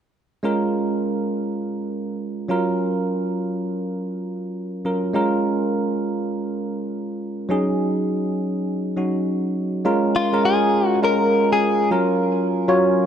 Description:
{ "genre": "R&B", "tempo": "102 BPM", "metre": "4/4", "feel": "swing 63% on 16ths", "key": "Db major", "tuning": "A4 = 439 Hz", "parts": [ { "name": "bell-like tine electric piano", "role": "accompaniment", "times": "0.4-13.1 s", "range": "Gb3 to Db5", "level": "-20 LUFS", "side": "right 1 dB", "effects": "analog chorus" }, { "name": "direct-recorded clean electric guitar", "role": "melody", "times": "10.2-11.9 s", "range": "F4 to Bb4", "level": "-20 LUFS", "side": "left 3 dB", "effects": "ping-pong delay" } ], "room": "moderate plate reverb, RT60 3.5 s", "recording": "dark, warm production", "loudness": "-20 LUFS", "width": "side -8 dB against mid", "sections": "0.4-9.8 A section; 9.8-13.1 B section", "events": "none", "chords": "0.4 Db6; 2.5 Gbmaj7; 5.1 Db6; 7.5 Ab7sus4; 9.8 Db6; 11.9 Gbmaj7" }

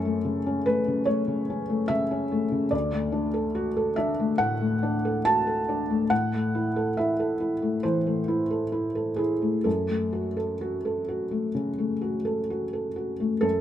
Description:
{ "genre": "neoclassical minimalist piano", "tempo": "62-73 BPM", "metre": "4/4", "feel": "rubato", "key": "F# minor", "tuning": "A4 = 440 Hz", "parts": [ { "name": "felt-muted upright piano", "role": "solo", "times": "0.0-13.6 s", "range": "D2 to A5", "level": "-24 LUFS", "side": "equal", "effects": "none" } ], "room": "light reverb", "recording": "none", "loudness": "-24 LUFS", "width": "side -11 dB against mid", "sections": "0.0-13.4 A section", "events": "none", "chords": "0.0 F#m; 2.7 D; 6.1 Am; 9.7 F#m" }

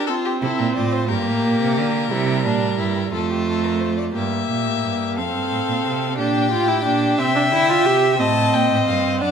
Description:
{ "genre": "classical, baroque-style fugue for string quartet", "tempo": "59 BPM (dotted quarters)", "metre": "6/8", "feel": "straight", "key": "unclear", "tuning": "A4 = 440 Hz", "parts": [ { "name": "warm violin", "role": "melody", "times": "0.0-9.3 s", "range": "G4 to A5", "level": "-24 LUFS", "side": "left 9 dB", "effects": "none" }, { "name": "warm violin", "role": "second line", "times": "0.0-9.3 s", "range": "D4 to E5", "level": "-24 LUFS", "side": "left 1 dB", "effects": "none" }, { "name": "warm viola", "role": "accompaniment", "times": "0.0-9.3 s", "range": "G3 to G4", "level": "-21 LUFS", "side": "right 2 dB", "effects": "none" }, { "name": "rich cello", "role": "bass", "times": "0.4-9.3 s", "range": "F2 to D3", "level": "-24 LUFS", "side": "right 6 dB", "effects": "none" } ], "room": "wet recital hall reverb, RT60 1.5 s", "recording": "minimal, uncompressed stereo recording", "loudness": "-17 LUFS", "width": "side -7 dB against mid", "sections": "0.0-4.2 A section; 4.2-9.3 B section", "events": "none", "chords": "0.1 F/C; 1.1 Gm; 2.1 C7; 3.1 F; 4.2 Gm69; 5.2 F; 6.2 Gm; 7.2 C; 8.2 Am7b5" }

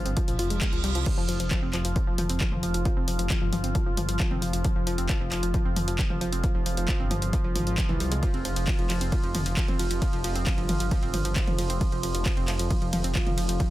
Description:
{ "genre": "driving peak-time techno", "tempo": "134 BPM", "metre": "4/4", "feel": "straight", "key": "unclear", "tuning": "A4 = 440 Hz", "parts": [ { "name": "detuned saw bass", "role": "bass", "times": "0.0-13.6 s", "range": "F1 to C2", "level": "-30 LUFS", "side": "equal", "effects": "sidechain pumping" }, { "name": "overtone-sweeping drone", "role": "drone", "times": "0.0-13.7 s", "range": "F3 to F4", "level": "-35 LUFS", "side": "equal", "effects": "chorus, built-in reverb, sidechain pumping" }, { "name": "analog pluck", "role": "riff", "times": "0.1-13.6 s", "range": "E3 to F4", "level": "-32 LUFS", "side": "equal", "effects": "chorus, tube saturation, sidechain pumping, digital delay" }, { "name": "punchy analog drum machine", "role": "drums", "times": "0.1-13.7 s", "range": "crash cymbal, handclaps, hi-hat, ride cymbal, toms", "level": "-32 LUFS", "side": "left 1 dB", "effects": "none" }, { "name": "electronic kick drum", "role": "drums", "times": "0.2-13.7 s", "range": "none", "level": "-27 LUFS", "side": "equal", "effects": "none" }, { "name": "reverse cymbal and impact", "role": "sound effects", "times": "0.3-2.9 s", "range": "none", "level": "-39 LUFS", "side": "right 4 dB", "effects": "none" } ], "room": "little or no reverb", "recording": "dense, heavily limited modern master", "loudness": "-24 LUFS", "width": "side -16 dB against mid", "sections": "0.0-1.1 A section; 1.1-13.7 B section", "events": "reverse cymbal 0.3-1.1; band accent 0.6; drop 1.1-13.7; impact 1.1-2.9", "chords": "0.0 Fm; 1.1 N.C." }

